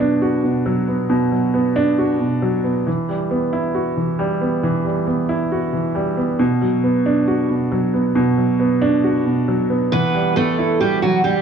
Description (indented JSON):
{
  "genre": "hip hop",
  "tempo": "136 BPM",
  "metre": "4/4",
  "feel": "half-time",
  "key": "E minor",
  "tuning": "A4 = 441 Hz",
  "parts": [
    { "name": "dark baby grand piano", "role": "accompaniment", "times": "0.0-11.4 s", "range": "B2 to F#4", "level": "-16 LUFS", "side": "right 1 dB", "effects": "low-pass filter" },
    { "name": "picked steel-string acoustic guitar", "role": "melody", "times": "9.9-11.4 s", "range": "F#3 to B4", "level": "-17 LUFS", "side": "right 4 dB", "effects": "low-pass filter, tape echo" }
  ],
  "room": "moderate lush hall reverb, RT60 2.2 s",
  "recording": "none",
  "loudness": "-16 LUFS",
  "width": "side -7 dB against mid",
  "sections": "0.0-11.4 A section",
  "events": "break 0.0-2.9",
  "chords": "0.0 Bm; 2.9 Emadd9; 6.4 Bm; 9.9 Emadd9",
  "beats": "0.22 0.66 | 1.10 1.54 1.98 2.42 | 2.86 3.31 3.75 4.19 | 4.63 5.07 5.51 5.95 | 6.39 6.83 7.28 7.72 | 8.16 8.60 9.04 9.48 | 9.92 10.36 10.80 11.25"
}